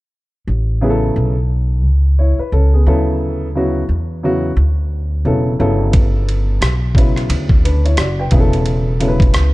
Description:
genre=hip hop, jazz-hop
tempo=88 BPM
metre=4/4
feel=swing 60% on 16ths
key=A major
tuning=A4 = 440 Hz
part: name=upright bass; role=bass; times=0.5-9.5 s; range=E1 to E2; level=-15 LUFS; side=equal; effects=none
part: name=dark upright piano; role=accompaniment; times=0.8-9.5 s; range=C#3 to G5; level=-19 LUFS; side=equal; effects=none
part: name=dusty soul sampler-style drum kit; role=drums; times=5.9-9.5 s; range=hi-hat, kick drum, ride cymbal, rim click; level=-14 LUFS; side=equal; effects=none
room=digital ambience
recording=dark, warm production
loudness=-13 LUFS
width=side -19 dB against mid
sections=0.5-9.5 A section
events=upright piano fill 9.3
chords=0.5 Aadd9; 2.9 Dmaj9; 5.6 G69; 8.3 Esus4

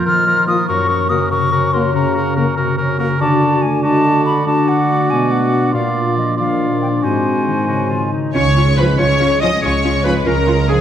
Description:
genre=cinematic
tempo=95 BPM (dotted quarters)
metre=12/8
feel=straight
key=unclear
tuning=A4 = 442 Hz
part: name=bright clarinet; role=second line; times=0.0-10.8 s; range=Eb4 to Eb5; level=-23 LUFS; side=equal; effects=none
part: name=warm oboe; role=second line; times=0.0-8.1 s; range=Bb4 to D5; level=-23 LUFS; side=right 2 dB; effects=none
part: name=concert harp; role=arpeggios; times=0.0-10.8 s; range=Gb2 to Db5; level=-20 LUFS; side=left 4 dB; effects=none
part: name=hollow concert flute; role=second line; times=0.1-10.8 s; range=Ab4 to F6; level=-20 LUFS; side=left 1 dB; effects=none
part: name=dark French horn section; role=sustained chords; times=0.5-10.8 s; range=F3 to Gb4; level=-22 LUFS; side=left 2 dB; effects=none
part: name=dark trombone section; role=sustained chords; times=0.7-10.8 s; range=Gb2 to F3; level=-22 LUFS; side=right 3 dB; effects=none
part: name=rich symphonic violin section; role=second line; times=8.3-10.8 s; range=Ab4 to Eb5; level=-24 LUFS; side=left 2 dB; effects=none
part: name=warm symphonic viola section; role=accompaniment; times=8.3-10.8 s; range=Db4 to F4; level=-22 LUFS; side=right 1 dB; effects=none
part: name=clear trumpet section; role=stabs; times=8.3-10.8 s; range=Ab4 to Eb5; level=-21 LUFS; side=equal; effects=none
part: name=dark symphonic double bass section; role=bass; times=8.3-10.8 s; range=Db2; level=-20 LUFS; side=right 3 dB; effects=none
part: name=rich symphonic cello section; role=bass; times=8.3-10.8 s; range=Db3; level=-19 LUFS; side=right 2 dB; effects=none
part: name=warm symphonic violin section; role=melody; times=8.4-10.8 s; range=Ab5 to Eb6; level=-24 LUFS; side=left 2 dB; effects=none
room=wet scoring stage reverb, RT60 1.7 s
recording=none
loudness=-13 LUFS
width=side -9 dB against mid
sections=0.0-8.3 A section; 8.3-10.8 A section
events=none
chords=0.0 Bb5; 0.7 Gb; 3.2 D; 5.7 Bb; 7.0 Ab7; 8.3 Db

